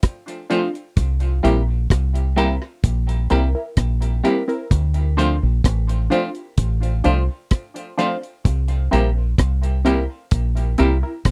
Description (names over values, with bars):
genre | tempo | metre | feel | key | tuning
dub reggae | 64 BPM | 4/4 | straight | unclear | A4 = 442 Hz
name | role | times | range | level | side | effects
deep reggae drum kit | drums | 0.0-11.3 s | hi-hat, kick drum, rim click | -20 LUFS | equal | none
semi-hollow electric guitar | accompaniment | 0.5-11.0 s | F3 to G4 | -26 LUFS | equal | tremolo, tape echo
filtered dub chord stab | stabs | 0.5-11.1 s | C4 to C5 | -26 LUFS | equal | phaser, tape echo
deep dub fingered electric bass | bass | 1.0-11.3 s | A1 to D2 | -21 LUFS | equal | none
room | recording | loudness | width
little or no reverb | dry, close 1970s-style studio recording | -20 LUFS | mono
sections
0.0-11.3 A section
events
none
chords
0.0 Dm7; 1.0 C7; 4.7 Dm7; 8.5 C7